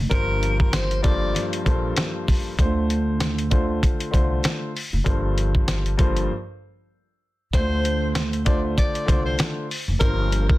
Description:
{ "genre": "hip hop, boom-bap hip-hop", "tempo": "97 BPM", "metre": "4/4", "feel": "swing 57% on 16ths", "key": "G minor", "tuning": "A4 = 440 Hz", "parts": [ { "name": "upright bass", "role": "bass", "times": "0.0-10.6 s", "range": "F1 to D2", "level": "-24 LUFS", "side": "equal", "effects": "none" }, { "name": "breathy tenor saxophone", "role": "melody", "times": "0.1-1.5, 7.5-10.6 s", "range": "Bb4 to D5", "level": "-28 LUFS", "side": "equal", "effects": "high-pass filter, low-pass filter, plate reverb, digital delay" }, { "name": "dark upright piano", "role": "accompaniment", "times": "0.1-10.6 s", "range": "G2 to C5", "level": "-27 LUFS", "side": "left 2 dB", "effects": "high-pass filter, low-pass filter, plate reverb" }, { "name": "dusty soul sampler-style drum kit", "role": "drums", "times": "0.1-10.6 s", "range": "hi-hat, kick drum, snare drum", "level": "-22 LUFS", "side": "equal", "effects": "none" } ], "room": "light reverb", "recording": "dense, heavily limited modern master", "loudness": "-20 LUFS", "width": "side -17 dB against mid", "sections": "0.0-10.6 A section", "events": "break 6.3-7.5", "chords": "0.1 Gm11; 2.6 Dm7; 5.1 Gm11; 7.5 Dm7; 10.0 Gm11" }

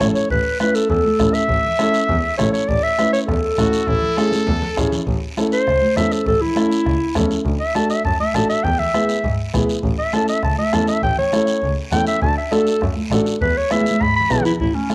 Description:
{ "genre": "latin, cumbia", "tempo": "201 BPM", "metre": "4/4", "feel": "straight", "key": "A major", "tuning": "A4 = 440 Hz", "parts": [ { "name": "breathy clarinet", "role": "melody", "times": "0.0-14.9 s", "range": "C#4 to B5", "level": "-18 LUFS", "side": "equal", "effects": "cassette tape" }, { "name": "dark upright piano", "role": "accompaniment", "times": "0.0-14.9 s", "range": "B3 to B4", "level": "-24 LUFS", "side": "left 1 dB", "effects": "cassette tape" }, { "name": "warm double bass", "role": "bass", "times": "0.0-14.7 s", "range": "A1 to G#2", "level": "-23 LUFS", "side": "equal", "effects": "none" }, { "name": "bombo", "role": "percussion", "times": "0.0-14.9 s", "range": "none", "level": "-25 LUFS", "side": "equal", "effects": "none" }, { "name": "congas", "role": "percussion", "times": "0.0-14.9 s", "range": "none", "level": "-23 LUFS", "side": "right 1 dB", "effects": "none" }, { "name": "guiro", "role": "percussion", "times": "0.0-14.9 s", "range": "none", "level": "-33 LUFS", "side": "right 2 dB", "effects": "none" }, { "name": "brilliant trumpet", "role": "second line", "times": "3.6-4.8 s", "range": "E4 to A4", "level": "-27 LUFS", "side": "left 1 dB", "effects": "cassette tape" } ], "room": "moderate spring reverb, RT60 1.7 s, studio reverb", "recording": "home recording on cassette", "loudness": "-15 LUFS", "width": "side -27 dB against mid", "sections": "0.0-5.1 A section; 5.1-14.6 B section", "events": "drum fill 4.3-5.1, 13.7-14.6; clarinet solo 5.1-14.6", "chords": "0.0 A; 7.5 D; 8.6 E; 9.8 A; 12.2 D; 13.4 E" }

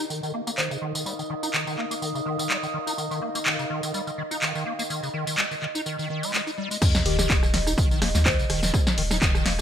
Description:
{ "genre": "acid house", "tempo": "125 BPM", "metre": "4/4", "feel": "swing 54% on 16ths", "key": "unclear", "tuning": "A4 = 439 Hz", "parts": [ { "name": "dark analog pad", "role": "sustained chords", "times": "0.0-9.6 s", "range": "Eb5", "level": "-35 LUFS", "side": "right 3 dB", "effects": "lush chorus, sidechain pumping" }, { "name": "acid bass, square", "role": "riff", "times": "0.0-9.6 s", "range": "Db3 to Eb4", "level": "-30 LUFS", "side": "equal", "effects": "overdrive, ensemble chorus, sidechain pumping, ping-pong delay" }, { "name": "warbly tape-like pad", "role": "texture", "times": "0.0-6.8 s", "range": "Eb4 to Eb6", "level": "-34 LUFS", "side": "left 1 dB", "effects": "chorus, built-in reverb, sidechain pumping" }, { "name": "punchy analog drum machine", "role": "drums", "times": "0.1-9.6 s", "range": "crash cymbal, handclaps, hi-hat, ride cymbal, rim click, snare drum, tambourine", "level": "-26 LUFS", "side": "equal", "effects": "none" }, { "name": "hollow square pluck", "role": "melody", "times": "0.6-0.9, 7.1-8.6 s", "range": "G4 to C5", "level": "-35 LUFS", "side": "left 3 dB", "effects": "lush chorus, digital delay" }, { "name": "electronic kick drum", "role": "drums", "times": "6.8-9.3 s", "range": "none", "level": "-23 LUFS", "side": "equal", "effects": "none" }, { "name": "sub drop", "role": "sound effects", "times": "6.8-8.7 s", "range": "none", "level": "-31 LUFS", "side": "equal", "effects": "none" }, { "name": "saturated sub bass", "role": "bass", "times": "7.1-9.6 s", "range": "Eb1 to Eb2", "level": "-27 LUFS", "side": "equal", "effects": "sidechain pumping" } ], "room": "light reverb, digital ambience", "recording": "bright 1980s-style digital production", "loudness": "-22 LUFS", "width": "side -9 dB against mid", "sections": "0.0-6.8 A section; 6.8-9.6 B section", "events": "filter sweep on acid bass 0.0-6.8; drop 6.8-9.6; impact 6.8-8.7", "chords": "0.0 Eb5" }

